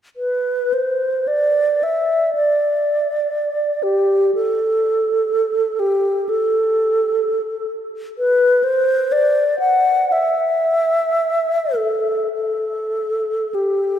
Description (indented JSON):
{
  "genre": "classical, free, expressive piece for unaccompanied alto flute",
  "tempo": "48-65 BPM",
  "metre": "4/4",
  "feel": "rubato",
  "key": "unclear",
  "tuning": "A4 = 440 Hz",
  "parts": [
    { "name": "bright wooden-headed alto flute", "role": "solo", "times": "0.2-14.0 s", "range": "G4 to F#5", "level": "-16 LUFS", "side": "equal", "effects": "none" }
  ],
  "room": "wet church reverb, RT60 3.5 s",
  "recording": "none",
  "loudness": "-16 LUFS",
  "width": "side -9 dB against mid",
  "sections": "0.2-14.0 A section",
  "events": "none",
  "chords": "none"
}